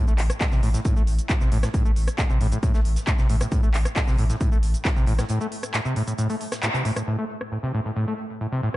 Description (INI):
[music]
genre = driving peak-time techno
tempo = 135 BPM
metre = 4/4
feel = straight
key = A minor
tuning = A4 = 439 Hz
[part]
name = overdriven acid bass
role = riff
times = 0.0-8.8 s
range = A2 to A3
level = -26 LUFS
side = equal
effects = lush chorus, sidechain pumping, ping-pong delay
[part]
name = saturated sub bass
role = bass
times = 0.1-5.2 s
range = A1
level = -23 LUFS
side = equal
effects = overdrive, sidechain pumping, low-pass filter
[part]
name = techno drum kit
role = drums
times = 0.1-8.8 s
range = handclaps, hi-hat, rim click, shaker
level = -30 LUFS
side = equal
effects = overdrive, low-pass filter on hats, low-pass filter on perc, low-pass filter on snare
[part]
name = modern studio drum kit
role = drums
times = 0.2-8.8 s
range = hi-hat, snare drum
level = -44 LUFS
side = right 2 dB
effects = none
[part]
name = electronic kick drum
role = drums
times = 0.4-4.9 s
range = none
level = -22 LUFS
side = equal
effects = overdrive
[sound]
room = light reverb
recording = dark, warm production, nothing above 10.9 kHz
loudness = -21 LUFS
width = side -17 dB against mid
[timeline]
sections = 0.0-7.1 A section; 7.1-8.8 B section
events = break 5.3-7.1; band accent 6.6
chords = none